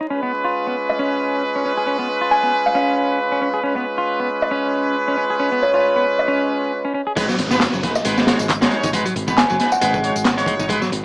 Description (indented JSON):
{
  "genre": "breakbeat, breaks",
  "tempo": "136 BPM",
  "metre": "4/4",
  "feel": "swing 56% on 16ths",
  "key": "G# dorian",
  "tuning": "A4 = 445 Hz",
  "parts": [
    { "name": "clean electric guitar", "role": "riff", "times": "0.0-10.9 s", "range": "F#3 to G#4", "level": "-22 LUFS", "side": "equal", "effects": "low-pass filter" },
    { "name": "brilliant brass ensemble", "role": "stabs", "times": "0.1-10.8 s", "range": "G#3 to C#5", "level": "-21 LUFS", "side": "right 1 dB", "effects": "vintage 12-bit sampler grit, digital delay" },
    { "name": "kalimba", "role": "melody", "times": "0.9-9.9 s", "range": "C#5 to G#5", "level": "-21 LUFS", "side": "equal", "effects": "old record sound, vintage 12-bit sampler grit, digital delay" },
    { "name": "crunchy breakbeat drum kit", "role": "drums", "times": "7.2-11.0 s", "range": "hi-hat, kick drum, snare drum", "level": "-20 LUFS", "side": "equal", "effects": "none" },
    { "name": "electronic tambourine and handclaps", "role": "drums", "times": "7.2-10.9 s", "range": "none", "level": "-24 LUFS", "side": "equal", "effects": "none" },
    { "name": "downlifter", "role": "sound effects", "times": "7.2-10.7 s", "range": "none", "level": "-29 LUFS", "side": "equal", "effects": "none" },
    { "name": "fingered electric bass", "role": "bass", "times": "7.4-11.0 s", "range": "F#1 to G#1", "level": "-26 LUFS", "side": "equal", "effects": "none" }
  ],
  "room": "light reverb",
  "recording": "vinyl crackle, small speaker sound",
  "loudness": "-16 LUFS",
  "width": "side -27 dB against mid",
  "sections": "0.0-7.2 A section; 7.2-11.0 B section",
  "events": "drop 7.2-11.0",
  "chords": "0.1 C#7; 7.2 G#m7"
}